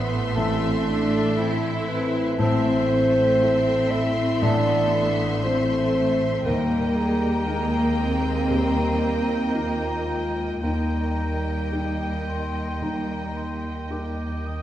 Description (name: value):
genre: cinematic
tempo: 54-60 BPM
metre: 4/4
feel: rubato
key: unclear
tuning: A4 = 440 Hz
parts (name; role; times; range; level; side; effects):
- rich studio violin section; melody; 0.0-14.6 s; G5 to C6; -36 LUFS; left 3 dB; none
- dark clarinet; second line; 0.0-13.9 s; Eb4 to E5; -27 LUFS; left 1 dB; none
- rich studio violin section; second line; 0.0-14.6 s; Eb5 to E5; -36 LUFS; left 2 dB; none
- rich studio viola section; accompaniment; 0.0-14.6 s; A3 to Bb3; -29 LUFS; right 1 dB; none
- warm grand piano; accompaniment; 0.0-14.6 s; A1 to G5; -29 LUFS; left 1 dB; none
- mellow French horn section; sustained chords; 0.0-13.9 s; Eb3 to E4; -30 LUFS; left 1 dB; none
- rich studio cello section; bass; 0.0-14.4 s; G3 to E4; -30 LUFS; right 1 dB; none
- rich studio double bass section; bass; 0.0-14.6 s; A1 to Eb2; -29 LUFS; right 2 dB; none
- clear oboe; second line; 0.4-14.6 s; E5 to G5; -36 LUFS; equal; none
- mellow hollow silver concert flute; second line; 0.4-14.6 s; G5 to Eb6; -34 LUFS; left 1 dB; none
room: wet recital hall reverb, RT60 1.5 s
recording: heard from further back in the room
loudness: -21 LUFS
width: side -12 dB against mid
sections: 0.0-14.6 A section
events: none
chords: 0.0 Am; 6.5 Eb